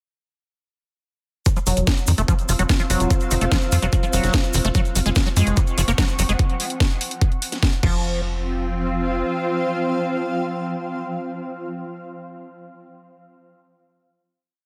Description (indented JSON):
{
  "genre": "psychedelic trance",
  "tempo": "146 BPM",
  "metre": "4/4",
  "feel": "straight",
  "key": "unclear",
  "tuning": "A4 = 438 Hz",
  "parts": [
    { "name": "liquid acid bass", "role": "riff", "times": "1.5-8.2 s", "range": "Eb3 to Bb3", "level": "-28 LUFS", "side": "equal", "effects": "chorus, sidechain pumping, dub echo" },
    { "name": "electronic kick drum", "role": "drums", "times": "1.5-7.9 s", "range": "none", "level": "-21 LUFS", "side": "equal", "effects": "overdrive" },
    { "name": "techno drum kit", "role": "drums", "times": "1.5-7.9 s", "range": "crash cymbal, hi-hat, snare drum", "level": "-29 LUFS", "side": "equal", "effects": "overdrive" },
    { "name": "cabasa", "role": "percussion", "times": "1.5-6.4 s", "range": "none", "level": "-34 LUFS", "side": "equal", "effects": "none" },
    { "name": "granular cloud pad", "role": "texture", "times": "2.1-11.4 s", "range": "C4 to Db6", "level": "-30 LUFS", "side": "equal", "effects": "built-in reverb, sidechain pumping" },
    { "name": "tight sequencer bass", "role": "bass", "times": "1.7-9.2 s", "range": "F1 to Gb2", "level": "-24 LUFS", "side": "equal", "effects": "none" },
    { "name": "swarming drone", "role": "sustained chords", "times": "5.4-11.0 s", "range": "F3 to C4", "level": "-33 LUFS", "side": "equal", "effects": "built-in reverb, sidechain pumping" }
  ],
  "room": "light reverb, digital ambience",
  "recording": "none",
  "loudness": "-21 LUFS",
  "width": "mono",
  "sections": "1.5-8.0 groove; 8.0-11.3 final chord",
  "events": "none",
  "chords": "1.5 F5; 4.7 Gb5; 7.8 F5",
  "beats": "| 1.46 1.87 2.28 2.69 | 3.10 3.52 3.93 4.34 | 4.75 5.16 5.57 5.98 | 6.39 6.80 7.21 7.63 | 8.04 8.45 8.86 9.27 | 9.68 10.09 10.50 10.91"
}